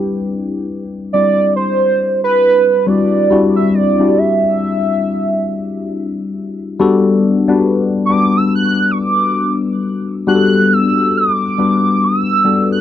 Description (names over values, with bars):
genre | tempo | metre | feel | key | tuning
R&B | 69 BPM | 4/4 | swing 58% on 16ths | G major | A4 = 440 Hz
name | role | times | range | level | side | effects
warm velvety synth lead | melody | 0.0-12.8 s | G4 to F#6 | -15 LUFS | right 3 dB | chorus
tine electric piano | accompaniment | 0.0-12.8 s | G3 to B4 | -14 LUFS | left 3 dB | phaser
room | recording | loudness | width
little or no reverb | dry, close 1970s-style studio recording | -12 LUFS | side -10 dB against mid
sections
0.0-6.8 A section; 6.8-12.8 B section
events
soft synth lead solo 0.0-6.8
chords
0.0 Cmaj9; 6.8 Gmaj9